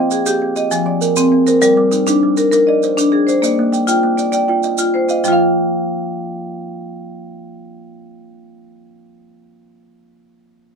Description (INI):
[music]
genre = southern african traditional, mbira-style interlocking cycle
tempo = 132 BPM (dotted quarters)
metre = 12/8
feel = straight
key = F dorian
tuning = A4 = 439 Hz
[part]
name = kalimba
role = arpeggios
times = 0.0-9.9 s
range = F3 to Ab5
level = -19 LUFS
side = right 5 dB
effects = none
[part]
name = marimba with hard mallets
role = arpeggios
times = 0.0-9.8 s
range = F3 to G5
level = -15 LUFS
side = left 2 dB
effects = none
[part]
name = maracas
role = percussion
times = 0.1-5.4 s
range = none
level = -25 LUFS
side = right 7 dB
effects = none
[sound]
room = moderate small room reverb, RT60 0.5 s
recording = minimal, uncompressed stereo recording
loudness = -12 LUFS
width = side -6 dB against mid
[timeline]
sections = 0.0-5.2 A section; 5.2-8.9 B section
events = none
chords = 0.0 Cm; 0.7 Fm; 1.6 Gm; 3.4 Bb; 5.2 F5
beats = 0.26 0.72 1.17 | 1.62 2.07 2.53 2.98 | 3.43 3.88 4.34 4.79 | 5.24 5.70 6.15 6.60 | 7.06 7.51 7.96 8.42